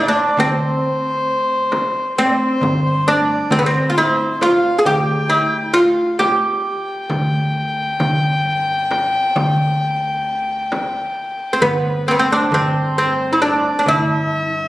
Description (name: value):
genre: Turkish makam ensemble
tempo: 133 BPM (eighths)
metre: 10/8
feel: straight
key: G makam hicaz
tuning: A4 = 440 Hz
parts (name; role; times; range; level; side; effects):
- oud; melody; 0.0-14.7 s; B3 to Ab4; -16 LUFS; right 1 dB; none
- dark violin; second line; 0.0-14.7 s; B4-23c to G5; -21 LUFS; left 2 dB; none
- upright bass; bass; 0.0-14.6 s; G1 to G2; -32 LUFS; equal; none
- darbuka; percussion; 0.4-14.4 s; none; -22 LUFS; equal; none
- frame drum; percussion; 0.4-14.1 s; none; -27 LUFS; equal; none
room: wet recital hall reverb, RT60 1.4 s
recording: recorded on a phone in the room, studio reverb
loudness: -15 LUFS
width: side -16 dB against mid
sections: 0.0-12.5 A section; 12.5-14.7 B section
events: none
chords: none